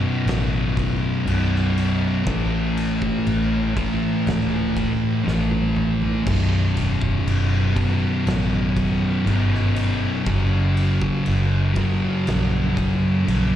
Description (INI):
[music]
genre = stoner and doom metal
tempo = 60 BPM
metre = 4/4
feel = straight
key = unclear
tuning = A4 = 445 Hz
[part]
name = thick fuzz guitar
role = riff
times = 0.0-13.6 s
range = B1 to A3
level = -23 LUFS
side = left 4 dB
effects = distortion
[part]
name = thick fuzz guitar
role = riff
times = 0.0-13.6 s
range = B1 to A3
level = -26 LUFS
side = right 8 dB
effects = distortion
[part]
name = vintage muted fingered electric bass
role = bass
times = 0.0-13.6 s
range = B0 to A#1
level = -22 LUFS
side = equal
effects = overdrive
[part]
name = oversized low-tuned drum kit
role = drums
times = 0.3-13.5 s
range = crash cymbal, kick drum, ride cymbal, snare drum, toms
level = -29 LUFS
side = equal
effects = none
[sound]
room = small room ambience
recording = live gig heard through the venue's PA, club reverb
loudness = -18 LUFS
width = side -11 dB against mid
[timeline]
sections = 0.0-13.6 A section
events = drum fill 5.3-6.3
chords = 0.0 B5; 2.3 A; 6.3 B5; 10.3 F#